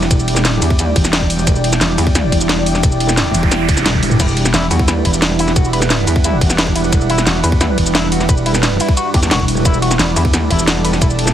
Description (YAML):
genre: dark technical drum and bass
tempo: 176 BPM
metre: 4/4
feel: straight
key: E minor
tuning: A4 = 440 Hz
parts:
  - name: deep dark ambient pad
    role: sustained chords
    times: 0.0-11.3 s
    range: G3 to A5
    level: -21 LUFS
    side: right 4 dB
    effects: chorus, built-in reverb, sidechain pumping
  - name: metallic wobble bass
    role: bass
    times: 0.0-11.0 s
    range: E1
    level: -18 LUFS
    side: equal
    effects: chorus
  - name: drum and bass drum kit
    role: drums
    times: 0.0-11.3 s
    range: cabasa, crash cymbal, hi-hat, ride cymbal, snare drum, toms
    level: -17 LUFS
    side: equal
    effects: none
  - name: airy breathy pad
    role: texture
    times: 0.0-11.3 s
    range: G3 to D5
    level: -22 LUFS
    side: equal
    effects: chorus, phaser, sidechain pumping
  - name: metallic wobble bass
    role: bass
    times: 0.1-11.3 s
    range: E1 to E2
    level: -17 LUFS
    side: equal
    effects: chorus, overdrive
  - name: electronic kick drum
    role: drums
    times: 0.1-11.1 s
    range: none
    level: -15 LUFS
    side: equal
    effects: none
  - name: noise sweep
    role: sound effects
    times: 3.3-4.2 s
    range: none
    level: -24 LUFS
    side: right 5 dB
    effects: none
  - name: electric guitar with an envelope filter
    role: arpeggios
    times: 4.2-11.1 s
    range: E4 to B4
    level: -23 LUFS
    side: left 4 dB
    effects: warbly pitch drift, sidechain pumping, dub echo
room: digital ambience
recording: heavily compressed radio sound, multiband compression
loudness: -12 LUFS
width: side -10 dB against mid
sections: 0.0-11.3 A section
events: noise sweep 3.3-4.2; drum fill 3.9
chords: 0.0 Emadd9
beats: | 0.11 0.45 0.79 1.13 | 1.47 1.81 2.15 2.49 | 2.83 3.17 3.52 3.86 | 4.20 4.54 4.88 5.22 | 5.56 5.90 6.24 6.58 | 6.92 7.27 7.61 7.95 | 8.29 8.63 8.97 9.31 | 9.65 9.99 10.33 10.68 | 11.02